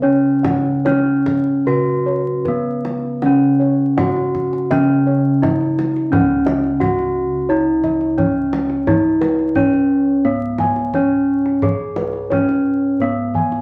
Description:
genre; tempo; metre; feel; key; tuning
Javanese gamelan; 71-87 BPM; 4/4; straight; C# slendro; A4 = 439 Hz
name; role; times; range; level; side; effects
gamelan-type bronze metallophone; melody; 0.0-13.6 s; B3-25c to G#4; -19 LUFS; equal; none
gamelan-type bronze metallophone; accompaniment; 0.0-6.1 s; C#3 to F#3; -27 LUFS; equal; none
gamelan-type bossed gongs; arpeggios; 0.0-13.6 s; B4-25c to G#5; -26 LUFS; equal; none
gamelan-type bossed gongs; bass; 0.0-13.6 s; C#2 to G#4; -27 LUFS; equal; none
kendang; percussion; 0.4-13.6 s; none; -26 LUFS; equal; none
room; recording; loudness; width
moderate studio reverb, RT60 0.7 s; vinyl crackle; -17 LUFS; mono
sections
0.0-6.1 A section; 6.1-13.6 B section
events
none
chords
none

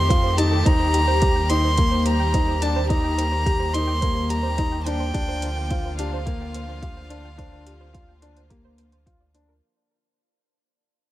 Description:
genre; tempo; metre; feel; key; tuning
piano and strings electronica; 107 BPM; 4/4; straight; unclear; A4 = 440 Hz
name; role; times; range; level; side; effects
clear violin; melody; 0.0-9.0 s; F5 to C6; -26 LUFS; equal; none
rich studio string section; sustained chords; 0.0-9.6 s; D3 to G4; -30 LUFS; left 2 dB; sidechain pumping
soft round pluck; arpeggios; 0.0-9.6 s; G4 to G5; -32 LUFS; right 7 dB; chorus, sidechain pumping, tape echo
warm sub bass; bass; 0.0-9.6 s; D2 to F2; -25 LUFS; equal; sidechain pumping
dark upright piano; riff; 0.1-9.5 s; Bb3 to G4; -27 LUFS; left 2 dB; none
electronic hi-hat; drums; 0.1-9.5 s; none; -32 LUFS; right 1 dB; none
electronic kick drum; drums; 0.1-9.2 s; none; -22 LUFS; equal; none
room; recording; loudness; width
small room ambience; none; -19 LUFS; side -15 dB against mid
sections
0.0-9.6 A section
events
drop 0.0-9.6; fade-out 0.7-9.6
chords
0.0 F7; 0.7 Eb; 5.1 Bb/D

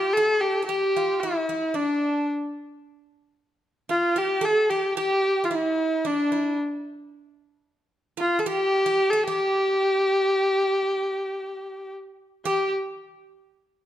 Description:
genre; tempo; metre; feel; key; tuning
Turkish makam ensemble; 112 BPM; 4/4; straight; G makam huseyni; A4 = 437 Hz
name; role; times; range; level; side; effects
clear kamancheh; melody; 0.0-12.7 s; D4 to A4-29c; -22 LUFS; left 1 dB; none
Greek bouzouki; second line; 0.0-12.7 s; D4 to A4-30c; -32 LUFS; right 6 dB; none
room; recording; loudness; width
moderate recital hall reverb, RT60 1.4 s; dark, warm production; -22 LUFS; side -12 dB against mid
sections
0.0-12.5 A section; 12.5-13.9 B section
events
none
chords
none

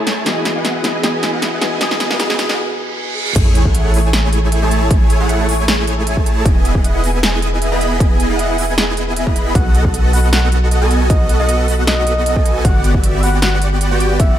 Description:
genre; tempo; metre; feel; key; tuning
future bass; 155 BPM; 4/4; swing 53% on 16ths, half-time; A lydian; A4 = 440 Hz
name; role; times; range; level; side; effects
felt-muted upright piano; accompaniment; 0.0-3.4 s; E3 to D#6; -23 LUFS; left 2 dB; sidechain pumping, ping-pong delay
concert harp; arpeggios; 0.0-14.4 s; F#4 to D#6; -25 LUFS; right 1 dB; sidechain pumping, low-pass filter, ping-pong delay
supersaw chords; riff; 0.0-14.4 s; A3 to B5; -19 LUFS; right 1 dB; ensemble chorus, sidechain pumping, low-pass filter
riser, reverse cymbal and sub drop; sound effects; 0.7-4.9 s; none; -26 LUFS; right 1 dB; none
big-room dance drum kit; drums; 0.1-14.3 s; crash cymbal, hi-hat, snare drum; -20 LUFS; equal; none
long sustained 808-style bass; bass; 3.4-14.4 s; E1 to B1; -16 LUFS; equal; sidechain pumping
electronic kick drum; drums; 3.4-14.3 s; none; -14 LUFS; equal; none
soft octave-layered synth lead; melody; 9.6-14.4 s; D#5 to F#5; -22 LUFS; equal; chorus, sidechain pumping, tape echo
room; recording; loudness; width
light reverb; high-pass filter; -12 LUFS; side -11 dB against mid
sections
0.0-3.4 A section; 3.4-14.4 B section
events
build-up 0.0-3.4; drum fill 0.0-2.6; break 2.6-3.4; reverse cymbal 2.6-3.4; drop 3.4-14.4; impact 3.4-4.9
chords
0.3 Emaj7; 3.4 Amaj7; 6.5 Emaj7; 9.6 B7; 12.6 Gmaj7

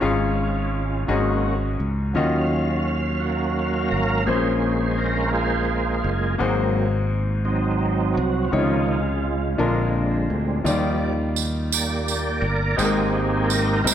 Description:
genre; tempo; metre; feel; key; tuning
slow gospel; 56 BPM (dotted quarters); 6/8; straight; Eb major from 10.7 s; A4 = 437 Hz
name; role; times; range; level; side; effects
bright grand piano; accompaniment; 0.0-13.9 s; Ab2 to F5; -25 LUFS; left 3 dB; none
overdriven tonewheel organ; sustained chords; 0.0-13.9 s; D3 to F5; -24 LUFS; right 3 dB; fast rotary speaker, chorus vibrato
fingered electric bass; bass; 0.0-13.9 s; Gb1 to Eb2; -24 LUFS; equal; none
tambourine; percussion; 10.7-13.9 s; none; -26 LUFS; right 8 dB; none
room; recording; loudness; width
moderate recital hall reverb, RT60 1.6 s; none; -20 LUFS; side -10 dB against mid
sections
0.0-10.7 A section; 10.7-13.9 A section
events
tonewheel organ solo 0.0-10.7, 10.7-13.9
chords
0.0 Db/Ab; 1.1 Ab7sus4; 2.1 Ebm9; 4.3 Bbm9; 6.4 Ab9; 8.5 Dbmaj9; 9.6 Bb7; 10.7 Ebmaj9; 12.8 Abmaj9

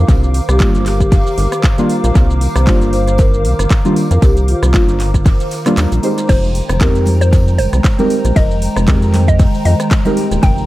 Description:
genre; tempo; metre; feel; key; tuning
deep house; 116 BPM; 4/4; swing 56% on 16ths; F dorian; A4 = 440 Hz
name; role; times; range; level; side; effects
hollow soft pad; sustained chords; 0.0-10.7 s; Ab3 to D6; -26 LUFS; equal; ensemble chorus, sidechain pumping
rubbery square bass; bass; 0.0-10.7 s; Eb1 to F2; -14 LUFS; equal; sidechain pumping
warbly tape-like pad; texture; 0.0-10.7 s; Eb3 to D6; -24 LUFS; right 1 dB; chorus, built-in reverb, sidechain pumping
compact cocktail drum kit; drums; 0.1-10.6 s; hi-hat, snare drum, tambourine; -36 LUFS; left 2 dB; sidechain pumping on hats, high-pass filter on hats, high-pass filter on snare, sidechain pumping on perc, high-pass filter on perc, high-pass filter on room, tape echo
electronic kick drum; drums; 0.1-10.5 s; none; -12 LUFS; equal; none
house drum kit; drums; 0.1-10.7 s; crash cymbal, handclaps, hi-hat, ride cymbal, rim click, shaker; -25 LUFS; right 1 dB; tape echo
vibraphone with soft mallets; melody; 0.5-4.7 s; F4 to C5; -21 LUFS; left 1 dB; tape echo
deep mellow chord stab; stabs; 0.6-10.7 s; Eb3 to C5; -18 LUFS; equal; chorus, sidechain pumping, dub echo
mallet-like synth pluck; melody; 6.3-10.7 s; C5 to G5; -22 LUFS; left 1 dB; chorus, dub echo
congas; percussion; 7.1-10.1 s; none; -25 LUFS; right 1 dB; none
room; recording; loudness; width
studio reverb; echo-heavy mix; -10 LUFS; side -16 dB against mid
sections
0.0-10.7 A section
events
kick drops out 5.8-6.3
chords
0.0 Cm11; 6.3 Fm11

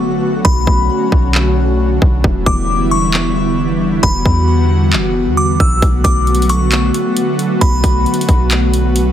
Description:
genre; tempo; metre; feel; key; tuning
hip hop, atmospheric cloud-rap; 134 BPM; 4/4; half-time; B minor; A4 = 440 Hz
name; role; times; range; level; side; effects
airy breathy pad; sustained chords; 0.0-9.1 s; D3 to F#4; -16 LUFS; equal; chorus, sidechain pumping
impact; sound effects; 0.0-0.5 s; none; -46 LUFS; equal; none
delicate synth tine bell; melody; 0.4-8.5 s; B5 to E6; -20 LUFS; left 2 dB; chorus, phaser, tremolo, tape echo
warm 808-style bass; bass; 0.5-9.1 s; E1 to E2; -15 LUFS; equal; none
trap drum kit; drums; 0.5-9.1 s; handclaps, hi-hat, kick drum; -16 LUFS; equal; none
room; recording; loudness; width
digital ambience; heavily compressed radio sound; -11 LUFS; side -10 dB against mid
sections
0.0-9.1 A section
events
break 0.0-5.8; impact 0.0-0.5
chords
0.0 Bm7; 2.2 Em7; 5.8 Bm7

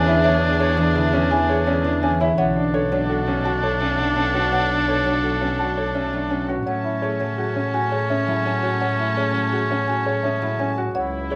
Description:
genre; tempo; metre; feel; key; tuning
classical, minimalist pattern music; 168 BPM; 6/4; straight; A major; A4 = 441 Hz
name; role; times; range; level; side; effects
folk marimba with soft mallets; melody; 0.0-11.4 s; G#4 to A5; -30 LUFS; equal; none
clear oboe; second line; 0.0-11.4 s; C#4 to E4; -27 LUFS; equal; none
concert harp; accompaniment; 0.0-11.4 s; D3 to D4; -29 LUFS; equal; none
warm studio string section; sustained chords; 0.0-11.4 s; C#4 to A5; -35 LUFS; equal; none
warm baby grand piano; arpeggios; 0.0-11.4 s; C#4 to C#5; -26 LUFS; equal; none
clear double bass; bass; 0.0-11.4 s; B1 to A2; -28 LUFS; equal; none
room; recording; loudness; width
moderate large studio reverb, RT60 1.0 s; none; -21 LUFS; mono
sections
0.0-11.4 A section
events
none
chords
0.0 E7; 2.4 Bm7; 6.7 Amaj7

